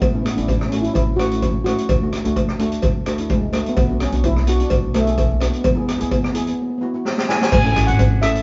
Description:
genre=calypso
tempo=128 BPM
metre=4/4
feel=straight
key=A major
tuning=A4 = 440 Hz
part: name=steel pan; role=melody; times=0.0-8.4 s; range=G#3 to G#5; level=-25 LUFS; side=equal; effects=none
part: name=upright bass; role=bass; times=0.0-8.4 s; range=G#1 to E2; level=-24 LUFS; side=equal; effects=none
part: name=street-band drum kit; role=drums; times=0.0-8.4 s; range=crash cymbal, hi-hat, kick drum, rim click, snare drum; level=-23 LUFS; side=equal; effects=none
part: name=cowbell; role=percussion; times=0.0-8.1 s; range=none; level=-27 LUFS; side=equal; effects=none
part: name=steel pan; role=accompaniment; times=0.1-8.4 s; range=A3 to A4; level=-27 LUFS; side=equal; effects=none
room=moderate stone room reverb, RT60 1.0 s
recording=band playing live in one room, nothing above 7.5 kHz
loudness=-19 LUFS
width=mono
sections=0.0-7.5 A section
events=drum fill 7.1-7.5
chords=0.0 A6; 1.9 D; 3.8 Bm; 5.6 E; 7.5 Amaj7

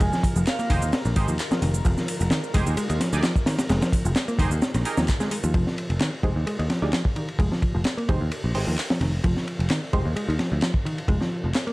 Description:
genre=breakbeat, breaks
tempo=130 BPM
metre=4/4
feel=swing 53% on 16ths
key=F minor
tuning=A4 = 440 Hz
part: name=vibraphone with hard mallets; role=melody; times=0.0-0.8 s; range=F5 to Ab5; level=-31 LUFS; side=right 2 dB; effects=AM radio sound
part: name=phased analog pad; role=sustained chords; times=0.0-5.5 s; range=Eb3 to Bb4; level=-37 LUFS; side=left 1 dB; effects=phaser, chorus, sidechain pumping
part: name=picked electric bass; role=riff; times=0.0-11.7 s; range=Eb3 to Eb4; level=-29 LUFS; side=equal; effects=overdrive, digital delay
part: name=picked electric bass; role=bass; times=0.0-11.5 s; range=F1 to Eb2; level=-25 LUFS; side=equal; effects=none
part: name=crunchy breakbeat drum kit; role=drums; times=0.0-11.7 s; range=hi-hat, kick drum, ride cymbal, snare drum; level=-25 LUFS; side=equal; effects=none
part: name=garage drum kit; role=drums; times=0.0-11.6 s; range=handclaps, hi-hat, shaker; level=-33 LUFS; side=equal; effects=none
part: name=band-passed chord stab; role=stabs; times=0.7-10.1 s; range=Eb4 to D5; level=-32 LUFS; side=right 3 dB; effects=chorus, cassette tape, digital delay
room=studio ambience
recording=vinyl crackle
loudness=-21 LUFS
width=side -21 dB against mid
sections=0.0-5.5 A section; 5.5-11.7 B section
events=drop 0.0-5.5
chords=0.0 Fm7

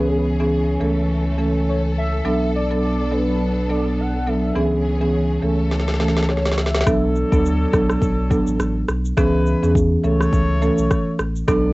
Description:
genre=afrobeats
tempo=104 BPM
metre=4/4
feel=swing 58% on 16ths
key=B dorian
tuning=A4 = 442 Hz
part: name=warm velvety synth lead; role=melody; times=0.0-7.2 s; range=G#4 to F#5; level=-28 LUFS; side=left 1 dB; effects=chorus, tape echo
part: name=marimba with soft mallets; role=accompaniment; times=0.0-11.7 s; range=E3 to A4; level=-20 LUFS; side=right 1 dB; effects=cassette tape
part: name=warm studio string section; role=sustained chords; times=0.0-6.9 s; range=E3 to A4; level=-28 LUFS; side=left 1 dB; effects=cassette tape
part: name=warm sub bass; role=bass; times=0.0-11.7 s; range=A1 to E2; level=-22 LUFS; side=equal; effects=none
part: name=afro-pop drum kit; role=drums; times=5.7-11.6 s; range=kick drum, rim click, shaker, snare drum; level=-21 LUFS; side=equal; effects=cassette tape
part: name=warm horn section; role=second line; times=6.9-11.7 s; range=F#3 to D5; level=-28 LUFS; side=left 2 dB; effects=cassette tape
room=light reverb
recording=home recording on cassette, nothing above 7.9 kHz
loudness=-17 LUFS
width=side -21 dB against mid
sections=0.0-6.9 A section; 6.9-11.7 B section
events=drum fill 5.7-6.9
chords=0.0 C#m7; 0.8 A/C#; 2.3 Bm7; 4.6 C#m7; 5.4 A/C#; 6.9 Bm7; 9.2 C#m7; 10.0 A/C#

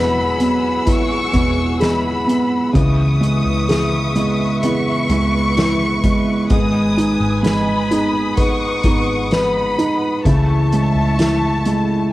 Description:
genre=pop ballad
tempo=64 BPM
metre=4/4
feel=straight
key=unclear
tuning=A4 = 440 Hz
part: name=warm studio violin section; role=second line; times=0.0-12.1 s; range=A5 to D#6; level=-23 LUFS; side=left 1 dB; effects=cassette tape
part: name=felt-muted upright piano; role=accompaniment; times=0.0-12.1 s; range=C#3 to B4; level=-17 LUFS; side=right 1 dB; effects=cassette tape
part: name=muted studio string section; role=sustained chords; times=0.0-12.1 s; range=G#4 to E6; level=-26 LUFS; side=left 2 dB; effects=cassette tape
part: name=fingerpicked plugged-in steel-string acoustic guitar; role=arpeggios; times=0.0-12.1 s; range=G#2 to G#4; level=-24 LUFS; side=left 4 dB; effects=cassette tape
part: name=vintage muted fingered electric bass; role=bass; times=0.0-12.1 s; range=E1 to C#2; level=-25 LUFS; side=equal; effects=none
part: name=soft-mallet drum kit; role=drums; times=0.4-11.9 s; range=hi-hat, kick drum, snare drum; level=-21 LUFS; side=equal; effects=cassette tape
room=light reverb, small room ambience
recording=home recording on cassette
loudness=-14 LUFS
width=side -16 dB against mid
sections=0.0-12.1 A section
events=none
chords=0.0 Eadd9; 2.7 C#m7; 6.5 G#m; 10.2 Amaj7/C#

